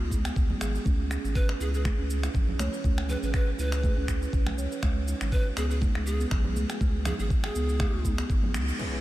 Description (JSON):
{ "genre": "afro house", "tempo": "121 BPM", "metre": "4/4", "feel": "swing 55% on 16ths", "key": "unclear", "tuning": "A4 = 441 Hz", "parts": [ { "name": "breathy pan flute", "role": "melody", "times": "0.0-8.1 s", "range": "G#4 to B4", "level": "-37 LUFS", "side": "right 1 dB", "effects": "diffuse ambient delay" }, { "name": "kalimba", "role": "arpeggios", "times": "0.0-8.8 s", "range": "G#3 to C#5", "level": "-35 LUFS", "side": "right 2 dB", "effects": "vintage 12-bit sampler grit, sidechain pumping, diffuse ambient delay" }, { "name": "warm sub bass", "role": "bass", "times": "0.0-8.7 s", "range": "G#1 to C#2", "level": "-30 LUFS", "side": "equal", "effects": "sidechain pumping" }, { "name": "afro-pop drum kit", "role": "drums", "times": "0.1-8.9 s", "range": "cabasa, crash cymbal, finger snaps", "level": "-36 LUFS", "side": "equal", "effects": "none" }, { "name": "electronic kick drum", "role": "drums", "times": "0.1-8.4 s", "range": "none", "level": "-26 LUFS", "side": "equal", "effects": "none" }, { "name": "congas", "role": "percussion", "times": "0.1-8.5 s", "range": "none", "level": "-38 LUFS", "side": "right 2 dB", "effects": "none" }, { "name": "percussive tonewheel organ", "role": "stabs", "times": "8.8-9.0 s", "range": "B3 to B4", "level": "-37 LUFS", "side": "right 2 dB", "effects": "overdrive, chorus vibrato, slow rotary speaker, sidechain pumping, low-pass filter" }, { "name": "impact", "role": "sound effects", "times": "8.8-9.0 s", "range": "none", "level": "-33 LUFS", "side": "equal", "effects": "none" } ], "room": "light reverb, digital ambience", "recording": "none", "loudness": "-25 LUFS", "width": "side -16 dB against mid", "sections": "0.0-8.8 A section", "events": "band accent 8.5; impact 8.8", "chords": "0.0 N.C.; 0.9 C#7(no3); 4.8 G#m", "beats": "0.36 | 0.86 1.35 1.85 2.35 | 2.84 3.34 3.83 4.33 | 4.83 5.32 5.82 6.31 | 6.81 7.30 7.80 8.30 | 8.79" }